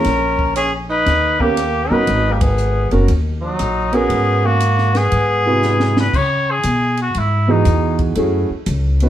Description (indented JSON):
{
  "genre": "jazz, small-group swing and bop",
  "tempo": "118 BPM",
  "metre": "4/4",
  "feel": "swing 67% on 8ths",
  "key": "G# minor",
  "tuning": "A4 = 438 Hz",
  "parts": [
    { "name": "trumpet with straight mute", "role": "melody", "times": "0.0-8.0 s", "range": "D#4 to C#5", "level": "-19 LUFS", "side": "left 2 dB", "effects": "none" },
    { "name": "growling tenor saxophone", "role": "second line", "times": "0.0-6.0 s", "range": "F#3 to D#4", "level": "-21 LUFS", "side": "right 2 dB", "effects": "none" },
    { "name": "warm concert grand piano", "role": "accompaniment", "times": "0.0-9.1 s", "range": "B#2 to B4", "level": "-19 LUFS", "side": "right 2 dB", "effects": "none" },
    { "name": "compact cocktail drum kit", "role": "drums", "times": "0.0-9.1 s", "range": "crash cymbal, hi-hat, kick drum, ride cymbal, rim click, snare drum", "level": "-24 LUFS", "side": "equal", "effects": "none" },
    { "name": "upright bass", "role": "bass", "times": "0.1-9.1 s", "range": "F#1 to C#3", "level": "-18 LUFS", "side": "equal", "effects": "none" }
  ],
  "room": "moderate studio reverb, RT60 0.7 s",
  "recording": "heard from further back in the room",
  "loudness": "-14 LUFS",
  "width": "side -11 dB against mid",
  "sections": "0.0-6.1 A section; 6.1-9.1 B section",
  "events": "band accent 2.3; drum fill 5.6-6.1",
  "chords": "0.0 A#m; 1.1 D#7b13; 2.1 G#m11; 5.1 G#7alt; 6.1 C#m11; 8.2 F#m7"
}